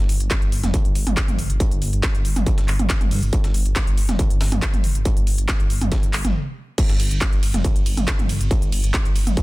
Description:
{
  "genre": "driving peak-time techno",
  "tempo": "139 BPM",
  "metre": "4/4",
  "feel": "straight",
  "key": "unclear",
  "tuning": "A4 = 440 Hz",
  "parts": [
    { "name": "dark detuned saw bass", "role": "bass", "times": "0.0-9.3 s", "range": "F1 to G2", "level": "-23 LUFS", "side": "equal", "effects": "sidechain pumping" },
    { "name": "breakbeat sampler-style drum kit", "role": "drums", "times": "0.1-9.4 s", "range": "hi-hat, snare drum", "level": "-36 LUFS", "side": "equal", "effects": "sidechain pumping on hats, high-pass filter on hats, high-pass filter on snare" },
    { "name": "techno drum kit", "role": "drums", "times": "0.1-9.4 s", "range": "crash cymbal, handclaps, hi-hat, ride cymbal, toms", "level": "-25 LUFS", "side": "right 1 dB", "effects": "sidechain pumping on hats, sidechain pumping on toms, sidechain pumping on cymbals" },
    { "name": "electronic kick drum", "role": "drums", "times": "0.3-9.4 s", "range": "none", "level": "-20 LUFS", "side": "equal", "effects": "distortion" }
  ],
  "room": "digital ambience",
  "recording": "dense, heavily limited modern master",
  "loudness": "-18 LUFS",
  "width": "side -20 dB against mid",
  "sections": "0.0-6.8 A section; 6.8-9.4 B section",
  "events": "stop 6.3-6.8; drop 6.8-9.4",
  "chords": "none"
}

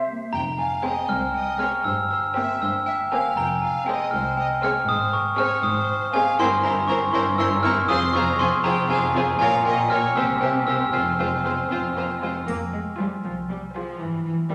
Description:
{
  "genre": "cinematic, playful, whimsical film cue",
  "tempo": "79 BPM (dotted quarters)",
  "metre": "6/8",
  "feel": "straight",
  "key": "F minor",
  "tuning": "A4 = 440 Hz",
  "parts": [
    { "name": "glockenspiel with soft plastic mallets", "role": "melody", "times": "0.3-11.7 s", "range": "G5 to F6", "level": "-24 LUFS", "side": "equal", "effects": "none" },
    { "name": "rich chamber violin section", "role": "melody", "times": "0.3-14.5 s", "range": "Bb4 to Db6", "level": "-36 LUFS", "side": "equal", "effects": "none" },
    { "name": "rich chamber double bass section", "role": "bass", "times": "0.3-14.5 s", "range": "F1 to G2", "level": "-36 LUFS", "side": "equal", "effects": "none" },
    { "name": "warm chamber cello section", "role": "bass", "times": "0.3-14.5 s", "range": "C2 to Bb3", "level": "-32 LUFS", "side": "equal", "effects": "none" },
    { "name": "warm studio violin section", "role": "second line", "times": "0.8-14.5 s", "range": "F4 to Db5", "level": "-32 LUFS", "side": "equal", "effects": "none" },
    { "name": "rich chamber viola section", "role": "accompaniment", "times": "0.9-14.5 s", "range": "Ab3 to F4", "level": "-33 LUFS", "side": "equal", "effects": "none" },
    { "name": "triangle", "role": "percussion", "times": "12.5-13.5 s", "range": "none", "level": "-56 LUFS", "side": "equal", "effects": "none" }
  ],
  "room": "wet scoring stage reverb, RT60 1.6 s",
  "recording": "none",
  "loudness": "-23 LUFS",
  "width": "mono",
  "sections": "0.3-12.5 A section; 12.5-14.5 B section",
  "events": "none",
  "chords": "0.3 Fm; 1.9 C5/G; 3.4 Fm; 4.9 Ab6; 6.4 C7/G; 7.9 Fm; 9.4 Bbm; 10.2 C5; 10.9 Fm; 14.0 C/G (rootless)"
}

